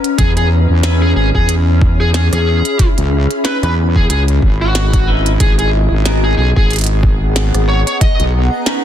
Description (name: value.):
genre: glitch hop.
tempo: 92 BPM.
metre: 4/4.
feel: swing 57% on 16ths.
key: G# minor.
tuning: A4 = 442 Hz.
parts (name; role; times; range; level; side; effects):
glitchy drum kit; drums; 0.0-8.8 s; hi-hat, rim click, snare drum; -20 LUFS; right 1 dB; studio reverb, soft clipping on snare.
granular cloud pad; texture; 0.0-8.8 s; B3 to B5; -20 LUFS; left 2 dB; built-in reverb, sidechain pumping.
smooth overdriven lead guitar; melody; 0.2-8.2 s; F#4 to D#5; -20 LUFS; equal; dub echo.
wobble bass; bass; 0.2-8.5 s; G#1 to E2; -13 LUFS; equal; chorus, tube saturation.
electronic kick drum; drums; 0.2-8.2 s; none; -14 LUFS; equal; overdrive, studio reverb.
clean electric guitar; stabs; 0.8-8.8 s; B3 to B4; -24 LUFS; equal; analog chorus, sidechain pumping, dub echo.
room: digital ambience.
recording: dense, heavily limited modern master.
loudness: -11 LUFS.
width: side -10 dB against mid.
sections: 0.0-8.8 A section.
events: none.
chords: 0.2 E6; 2.8 C#m9; 5.4 G#m9; 8.0 Bmaj9.